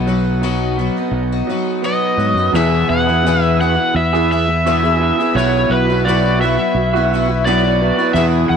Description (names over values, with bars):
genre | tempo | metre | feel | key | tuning
folk rock and heartland rock | 85 BPM | 4/4 | straight | E major | A4 = 441 Hz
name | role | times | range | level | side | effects
picked twelve-string acoustic guitar | accompaniment | 0.0-8.6 s | E2 to G#4 | -20 LUFS | left 11 dB | none
electric guitar through a small old amp | riff | 0.0-8.6 s | E2 to G#4 | -19 LUFS | right 11 dB | phaser
fingered electric bass | bass | 0.0-8.6 s | B1 to G#2 | -18 LUFS | equal | none
overdriven slide guitar | melody | 1.9-8.6 s | B4 to F#5 | -18 LUFS | left 1 dB | none
tonewheel organ | sustained chords | 2.5-8.6 s | B3 to B4 | -28 LUFS | equal | slow rotary speaker
room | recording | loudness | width
moderate echo chamber reverb, RT60 2.1 s | 1960s-style stereo with parts hard left and right | -13 LUFS | side -7 dB against mid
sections
0.0-2.5 A section; 2.5-8.6 B section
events
none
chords
0.0 B; 2.5 E; 5.4 Bsus4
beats
0.42 1.13 1.83 | 2.54 3.24 3.95 4.65 | 5.35 6.05 6.75 7.45 | 8.15